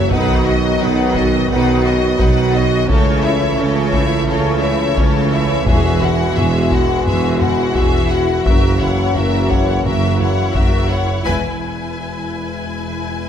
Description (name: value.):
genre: cinematic, epic orchestral film score.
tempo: 86 BPM.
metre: 4/4.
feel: straight.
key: E major.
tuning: A4 = 445 Hz.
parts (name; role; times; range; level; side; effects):
warm symphonic violin section; melody; 0.0-13.3 s; C#5 to G#5; -24 LUFS; left 6 dB; none.
rich symphonic violin section; second line; 0.0-13.3 s; F#4 to D#5; -24 LUFS; left 5 dB; none.
warm symphonic viola section; accompaniment; 0.0-13.3 s; C#4 to F#4; -25 LUFS; equal; none.
bright trombone section; sustained chords; 0.0-10.9 s; D#3 to A#3; -23 LUFS; right 4 dB; none.
dark French horn section; sustained chords; 0.0-13.3 s; G#3 to F#4; -23 LUFS; left 3 dB; none.
mellow tuba; bass; 0.0-11.2 s; E1 to C#2; -22 LUFS; right 4 dB; none.
rich symphonic cello section; bass; 0.0-13.3 s; E2 to C#3; -22 LUFS; right 2 dB; none.
rich symphonic double bass section; bass; 0.0-13.3 s; E1 to C#2; -23 LUFS; right 3 dB; none.
taiko ensemble; drums; 0.1-12.6 s; none; -20 LUFS; left 1 dB; none.
timpani; percussion; 5.7-6.7 s; E2; -24 LUFS; left 1 dB; none.
room: moderate scoring stage reverb, RT60 1.9 s.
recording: none.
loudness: -13 LUFS.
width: side -8 dB against mid.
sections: 0.0-11.2 A section; 11.2-13.3 B section.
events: band accent 11.2-11.9.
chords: 0.1 B; 2.9 A/C#; 5.7 Eadd9; 8.5 F#7; 11.2 E.